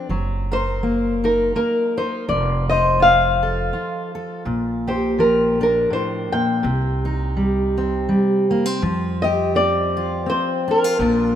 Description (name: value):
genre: acoustic folk duo or small band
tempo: 83 BPM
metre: 3/4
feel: swing 57% on 8ths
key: unclear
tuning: A4 = 440 Hz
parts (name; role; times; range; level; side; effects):
- fingerpicked steel-string acoustic guitar; accompaniment; 0.0-11.4 s; A2 to C5; -21 LUFS; equal; none
- upright bass; bass; 0.1-11.4 s; F1 to F2; -25 LUFS; right 1 dB; none
- flamenco guitar; melody; 0.5-11.4 s; Bb4 to G5; -19 LUFS; left 1 dB; none
room: moderate plate reverb, RT60 3.5 s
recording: rough home demo mix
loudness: -17 LUFS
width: side -10 dB against mid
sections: 0.0-11.4 A section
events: none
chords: 0.1 Ebm/Gb; 2.3 F; 4.5 Bb6; 6.6 Cm; 8.8 Fsus2